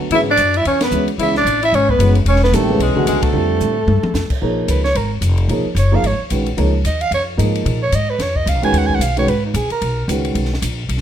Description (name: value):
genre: modal jazz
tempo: 223 BPM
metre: 4/4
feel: swing 59% on 8ths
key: C# phrygian, Bb phrygian from 4.4 s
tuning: A4 = 440 Hz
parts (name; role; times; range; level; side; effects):
- dark upright piano; accompaniment; 0.0-10.5 s; D3 to Eb5; -20 LUFS; right 1 dB; none
- upright bass; bass; 0.0-11.0 s; E1 to Bb2; -18 LUFS; equal; none
- breathy alto saxophone; second line; 0.1-4.3 s; G#3 to E4; -20 LUFS; left 6 dB; none
- compact cocktail drum kit; drums; 0.1-11.0 s; crash cymbal, hi-hat, kick drum, ride cymbal, snare drum, toms; -25 LUFS; left 1 dB; none
- growling soprano saxophone; melody; 0.2-10.1 s; Eb4 to Ab5; -19 LUFS; right 3 dB; plate reverb
room: moderate studio reverb, RT60 0.6 s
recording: none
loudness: -14 LUFS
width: side -10 dB against mid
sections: 0.0-4.4 A section; 4.4-11.0 B section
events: band accent 0.8, 3.2; drum fill 3.6-4.2; soprano saxophone solo 4.4-11.0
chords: 0.0 C#m7; 3.3 F; 4.4 Bbm7; 8.7 Abm